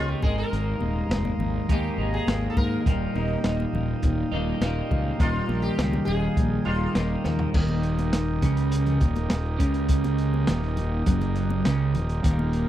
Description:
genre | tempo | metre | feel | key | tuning
psychedelic rock | 102 BPM | 4/4 | straight | Eb mixolydian | A4 = 440 Hz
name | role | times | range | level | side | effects
sitar | melody | 0.0-6.9 s | Eb4 to Bb4 | -33 LUFS | equal | slapback echo
combo organ | sustained chords | 0.0-12.7 s | Bb3 to Eb6 | -38 LUFS | right 6 dB | spring reverb
twelve-string electric guitar | riff | 0.0-12.7 s | Eb2 to Ab4 | -26 LUFS | right 1 dB | phaser, double-tracked left and right
fuzz fingered electric bass | bass | 0.0-12.7 s | Eb1 to Ab2 | -27 LUFS | equal | overdrive
organ-like drone | drone | 0.0-7.6 s | Eb2 | -38 LUFS | left 1 dB | none
crunchy breakbeat drum kit | drums | 0.2-12.7 s | crash cymbal, hi-hat, kick drum, snare drum, toms | -25 LUFS | equal | none
congas | percussion | 0.2-12.5 s | none | -37 LUFS | left 3 dB | none
room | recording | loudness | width
little or no reverb | dry, close 1970s-style studio recording | -22 LUFS | side -12 dB against mid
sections
0.0-7.5 A section; 7.5-12.7 B section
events
sitar solo 0.0-7.5; drum fill 7.3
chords
0.2 Abadd9; 2.9 Ebadd9; 7.5 Eb

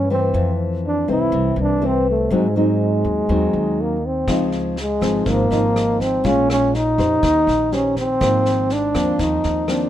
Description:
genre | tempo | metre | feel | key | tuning
bossa nova | 122 BPM | 4/4 | straight | unclear | A4 = 441 Hz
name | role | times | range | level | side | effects
breathy trombone | melody | 0.0-9.9 s | Ab3 to E4 | -19 LUFS | equal | none
nylon-string guitar | accompaniment | 0.0-9.9 s | F2 to C5 | -21 LUFS | left 2 dB | none
upright bass | bass | 0.0-9.9 s | Ab1 to Ab2 | -24 LUFS | right 1 dB | none
vintage brush drum kit | drums | 4.3-9.8 s | kick drum, rim click, snare drum | -28 LUFS | equal | none
room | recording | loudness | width
little or no reverb | minimal, uncompressed stereo recording | -16 LUFS | side -12 dB against mid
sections
0.0-9.9 A section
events
none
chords
0.3 Fmaj7; 2.3 Ab7; 4.3 Dbmaj9; 6.2 Bbm7; 7.2 Eb6; 8.2 Ab69

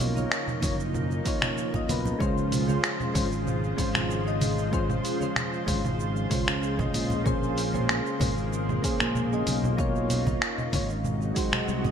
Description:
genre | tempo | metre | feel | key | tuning
sunset chillout | 95 BPM | 4/4 | straight | Db major | A4 = 440 Hz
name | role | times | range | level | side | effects
soft electric-piano-like synth keys | accompaniment | 0.0-11.9 s | Ab3 to Eb5 | -31 LUFS | moving between left 4 dB and right 4 dB | chorus, tremolo, auto-pan, ping-pong delay
lush unison pad | sustained chords | 0.0-11.9 s | C3 to C5 | -32 LUFS | left 1 dB | chorus
sustaining fretless electric bass | bass | 0.0-11.9 s | Gb1 to Db2 | -29 LUFS | equal | wide subtle chorus
dusty soul sampler-style drum kit | drums | 0.0-11.9 s | cabasa, congas, finger snaps, hi-hat | -30 LUFS | right 1 dB | gated reverb
congas | percussion | 0.2-11.9 s | none | -35 LUFS | right 1 dB | none
electronic kick drum | drums | 0.6-11.9 s | none | -31 LUFS | equal | overdrive
room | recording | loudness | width
light reverb | bright 1980s-style digital production | -24 LUFS | side -8 dB against mid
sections
0.0-11.9 A section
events
none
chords
0.0 Cbmaj9#11; 2.2 Dbmaj7; 7.3 Bbm9; 9.8 Cbmaj9#11; 11.0 Ab7

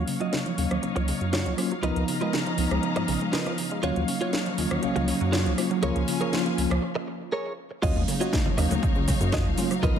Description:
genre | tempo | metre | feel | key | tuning
nu-disco, nu disco | 120 BPM | 4/4 | straight | Eb minor | A4 = 440 Hz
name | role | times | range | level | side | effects
mellow tine electric piano | accompaniment | 0.0-10.0 s | F3 to F5 | -28 LUFS | equal | medium stereo tremolo, sidechain pumping, digital delay
clear symphonic string section | sustained chords | 0.0-10.0 s | Db4 to Bb5 | -34 LUFS | left 4 dB | sidechain pumping, low-pass filter
chorused synth bass | bass | 0.0-10.0 s | Cb2 to Ab2 | -28 LUFS | equal | none
wide unison pluck | arpeggios | 0.1-10.0 s | Db3 to Ab3 | -33 LUFS | right 4 dB | sidechain pumping, dub echo
house drum kit | drums | 0.1-9.9 s | cabasa, crash cymbal, hi-hat, rim click, snare drum | -32 LUFS | equal | overdrive
direct-recorded clean electric guitar | riff | 0.2-10.0 s | F4 to Eb5 | -32 LUFS | right 2 dB | analog chorus, low-pass filter, digital delay
electronic kick drum | drums | 7.8-9.9 s | none | -26 LUFS | equal | overdrive
cabasa, congas and bongos | percussion | 7.8-10.0 s | none | -35 LUFS | left 4 dB | none
room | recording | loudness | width
light reverb | none | -23 LUFS | side -8 dB against mid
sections
0.0-7.8 A section; 7.8-10.0 B section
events
build-up 0.0-7.8; filter sweep on synth arpeggio sound 0.0-7.8; break 6.8-7.8; drop 7.8-10.0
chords
0.0 Ebm9; 1.8 Db13; 3.8 Ebm9; 5.8 Bbm7/Db; 7.8 Ebm9

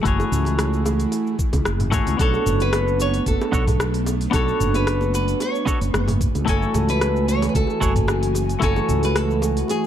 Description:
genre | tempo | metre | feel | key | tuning
sunset chillout | 112 BPM | 4/4 | swing 53% on 16ths | B dorian | A4 = 441 Hz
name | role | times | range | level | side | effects
semi-hollow electric guitar | accompaniment | 0.0-9.9 s | A3 to G#5 | -25 LUFS | moving between left 6 dB and right 5 dB | auto-pan, tape echo
airy breathy pad | sustained chords | 0.0-9.9 s | E3 to G#5 | -28 LUFS | equal | chorus, vintage 12-bit sampler grit
mellow fretless electric bass | bass | 0.1-9.6 s | F#1 to C#2 | -22 LUFS | equal | tube saturation, analog chorus
electronic kick drum | drums | 0.1-8.7 s | none | -22 LUFS | equal | none
smooth R&B drum kit | drums | 0.1-9.9 s | hi-hat, rim click, shaker, toms | -27 LUFS | equal | none
bongos | percussion | 0.2-9.8 s | none | -34 LUFS | right 2 dB | none
nylon-string guitar | melody | 2.2-9.9 s | G#4 to C#5 | -25 LUFS | right 1 dB | ping-pong delay
room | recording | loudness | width
light reverb, digital ambience | dark, warm production | -18 LUFS | side -10 dB against mid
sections
0.0-9.9 A section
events
none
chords
0.0 F#m9; 2.2 Bm9; 6.2 F#m9

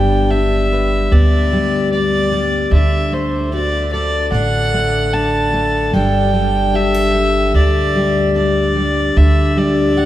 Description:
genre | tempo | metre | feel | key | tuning
acoustic folk duo or small band | 74 BPM | 4/4 | straight | G major | A4 = 440 Hz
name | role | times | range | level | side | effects
warm fiddle | melody | 0.0-10.1 s | C5 to A5 | -19 LUFS | equal | none
fingerpicked steel-string acoustic guitar | accompaniment | 0.0-10.1 s | G2 to B4 | -17 LUFS | left 2 dB | none
upright bass | bass | 0.0-10.1 s | G1 to D2 | -17 LUFS | right 1 dB | none
room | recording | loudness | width
wet cathedral reverb, RT60 5.3 s | in a vast, echoing space | -13 LUFS | side -13 dB against mid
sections
0.0-10.1 A section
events
none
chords
0.0 G; 2.7 D; 5.9 Gsus2; 9.2 Dsus4

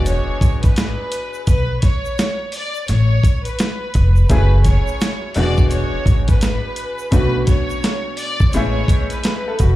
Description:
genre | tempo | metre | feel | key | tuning
hip hop, boom-bap hip-hop | 85 BPM | 4/4 | swing 62% on 16ths | unclear | A4 = 442 Hz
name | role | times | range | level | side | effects
clear studio violin section | melody | 0.0-9.8 s | B4 to D5 | -25 LUFS | equal | high-pass filter, low-pass filter, ping-pong delay
warm upright piano | accompaniment | 0.0-9.8 s | E2 to A4 | -24 LUFS | left 2 dB | cassette tape, high-pass filter, low-pass filter
upright bass | bass | 0.0-9.8 s | E1 to B1 | -17 LUFS | equal | none
dusty soul sampler-style drum kit | drums | 0.1-9.8 s | hi-hat, kick drum, snare drum | -16 LUFS | equal | none
tube shaker | percussion | 0.1-9.8 s | none | -41 LUFS | right 8 dB | none
room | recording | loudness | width
light reverb | played on a big sound system in a bare room, large studio reverb | -15 LUFS | side -16 dB against mid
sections
0.0-9.8 A section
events
none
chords
0.0 E7; 1.5 Bmadd9; 2.9 C#aug7; 4.3 F#m9; 5.4 E7; 7.1 Bm7; 8.5 Amaj7

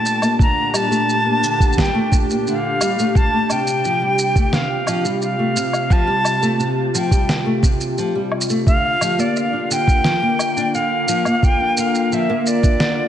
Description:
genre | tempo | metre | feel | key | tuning
folktronica | 87 BPM | 4/4 | straight | unclear | A4 = 441 Hz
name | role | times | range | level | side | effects
bright concert flute | melody | 0.0-13.1 s | D5 to Bb5 | -20 LUFS | equal | analog delay
warbly tape-like pad | sustained chords | 0.0-13.1 s | Bb2 to Bb4 | -22 LUFS | equal | chorus, built-in reverb
nylon-string guitar | arpeggios | 0.0-13.1 s | C3 to D4 | -23 LUFS | left 1 dB | wide subtle chorus, analog delay
electronic shaker, woodblock and snare drum | drums | 0.1-12.9 s | none | -24 LUFS | equal | studio reverb
electronic kick drum | drums | 0.4-12.8 s | none | -15 LUFS | equal | studio reverb
room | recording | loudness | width
wet lush hall reverb, RT60 2.4 s | dreamy mix soaked in reverb, nothing above 10.9 kHz | -15 LUFS | side -10 dB against mid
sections
0.0-13.1 A section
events
none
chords
0.0 Gmadd9; 3.2 Fadd9; 8.7 Bb

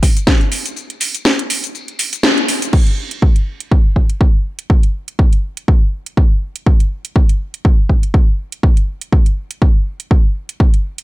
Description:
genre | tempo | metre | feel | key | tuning
house | 122 BPM | 4/4 | swing 56% on 16ths | none | none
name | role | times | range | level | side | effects
electronic kick drum | drums | 0.0-10.7 s | none | -11 LUFS | equal | none
house drum kit | drums | 0.0-11.0 s | crash cymbal, hi-hat, shaker, snare drum | -16 LUFS | equal | sidechain pumping on hats, sidechain pumping on perc, sidechain pumping on cymbals
tambourine | percussion | 0.0-11.0 s | none | -33 LUFS | left 6 dB | none
room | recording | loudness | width
digital ambience | none | -12 LUFS | side -18 dB against mid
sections
0.0-2.7 A section; 2.7-11.0 B section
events
break 0.8-2.7; band accent 2.2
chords
none

